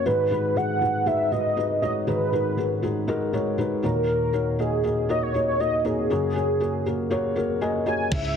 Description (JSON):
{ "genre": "piano-driven pop", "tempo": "119 BPM", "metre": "4/4", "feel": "straight", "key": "G# minor", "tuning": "A4 = 441 Hz", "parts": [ { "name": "warm velvety synth lead", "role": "melody", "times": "0.0-8.4 s", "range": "G#4 to G#5", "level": "-25 LUFS", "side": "right 1 dB", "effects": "chorus, tape echo" }, { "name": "felt-muted upright piano", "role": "accompaniment", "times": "0.0-8.4 s", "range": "D#2 to G#5", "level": "-24 LUFS", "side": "left 1 dB", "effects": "none" }, { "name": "vintage muted fingered electric bass", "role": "bass", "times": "8.1-8.3 s", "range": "C#2", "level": "-28 LUFS", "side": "right 1 dB", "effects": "none" }, { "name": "dusty soul sampler-style drum kit", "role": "drums", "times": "8.1-8.4 s", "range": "crash cymbal, hi-hat, kick drum", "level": "-27 LUFS", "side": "equal", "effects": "none" } ], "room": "moderate plate reverb, RT60 2.2 s", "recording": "dense, heavily limited modern master", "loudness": "-22 LUFS", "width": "side -7 dB against mid", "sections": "0.0-8.1 A section", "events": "felt piano fill 7.4-8.1", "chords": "0.1 G#m7; 3.8 D#m7; 6.1 F#add9" }